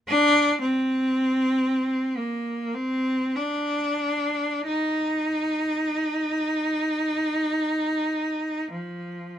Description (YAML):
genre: classical, free, expressive piece for unaccompanied cello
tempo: 36-59 BPM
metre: 4/4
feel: rubato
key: unclear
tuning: A4 = 440 Hz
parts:
  - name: rich cello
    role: solo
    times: 0.1-9.4 s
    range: F3 to Eb4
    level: -22 LUFS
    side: equal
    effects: none
room: light reverb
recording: close, detailed microphones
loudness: -22 LUFS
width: side -10 dB against mid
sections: 0.0-9.4 A section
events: none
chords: none